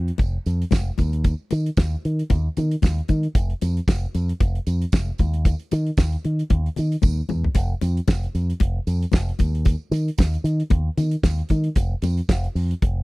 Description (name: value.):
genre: disco.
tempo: 114 BPM.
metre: 4/4.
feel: swing 56% on 16ths.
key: unclear.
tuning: A4 = 440 Hz.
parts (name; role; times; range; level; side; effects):
fingered electric bass with an envelope filter; bass; 0.0-13.0 s; F1 to Eb3; -22 LUFS; equal; none.
damped 70s drum kit; drums; 0.1-13.0 s; hi-hat, kick drum, snare drum, toms; -19 LUFS; equal; none.
congas; percussion; 0.2-13.0 s; none; -30 LUFS; left 8 dB; none.
tambourine; percussion; 0.2-12.7 s; none; -44 LUFS; right 12 dB; none.
room: small room ambience.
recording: dry, close 1970s-style studio recording.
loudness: -20 LUFS.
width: side -22 dB against mid.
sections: 0.0-13.0 A section.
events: drum fill 7.0-7.6.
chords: none.